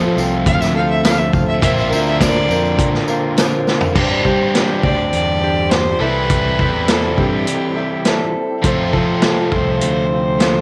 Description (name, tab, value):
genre	folk rock and heartland rock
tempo	102 BPM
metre	4/4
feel	straight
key	unclear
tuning	A4 = 440 Hz
part	picked old ladder-braced acoustic guitar	accompaniment	0.0-10.6 s	Bb2 to C5	-24 LUFS	equal	plate reverb
part	tonewheel organ	sustained chords	0.0-10.6 s	C4 to C5	-34 LUFS	equal	none
part	biting overdriven guitar	riff	0.0-10.6 s	F2 to G4	-23 LUFS	equal	none
part	fingered electric bass	bass	0.0-10.6 s	Bb1 to G3	-23 LUFS	equal	none
part	tambourine	percussion	0.0-3.9 s	none	-36 LUFS	equal	none
part	clear fiddle	melody	0.5-10.6 s	G4 to F5	-23 LUFS	equal	cassette tape, plate reverb
part	vintage drum kit	drums	0.5-10.5 s	crash cymbal, hi-hat, kick drum, snare drum, toms	-20 LUFS	equal	none
room	moderate studio reverb, RT60 0.6 s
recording	home recording on cassette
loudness	-16 LUFS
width	mono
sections	0.0-4.0 A section; 4.0-10.6 B section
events	fiddle solo 0.0-4.0; drum fill 3.7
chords	0.0 F; 1.6 Bbadd9; 4.0 Gsus4; 6.0 C6; 8.6 F